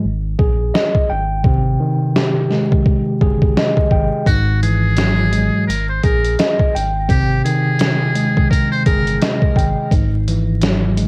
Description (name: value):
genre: hip hop, boom-bap hip-hop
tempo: 85 BPM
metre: 4/4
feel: swing 60% on 16ths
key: Ab major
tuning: A4 = 440 Hz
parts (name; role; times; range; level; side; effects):
- tine electric piano; accompaniment; 0.0-11.1 s; G#2 to G5; -19 LUFS; equal; cassette tape
- sub bass with octave; bass; 0.0-11.1 s; G1 to Bb1; -23 LUFS; equal; none
- trip hop sampler-style drum kit; drums; 0.4-11.1 s; hi-hat, kick drum, snare drum; -19 LUFS; equal; none
- trumpet with metal mute; melody; 4.3-9.2 s; F#4 to C5; -25 LUFS; equal; cassette tape, tape echo
room: light reverb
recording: home recording on cassette, vinyl crackle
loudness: -16 LUFS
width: mono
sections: 0.0-11.1 A section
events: break 0.0-4.3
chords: 0.0 Ebsus4/Ab; 1.1 Abmaj7; 4.3 Eadd9/G#; 5.7 Ebsus4/Ab; 6.7 Abmaj7; 9.9 Eadd9/G#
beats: 0.03 0.74 | 1.45 2.15 2.86 3.56 | 4.27 4.97 5.68 6.39 | 7.09 7.80 8.50 9.21 | 9.91 10.62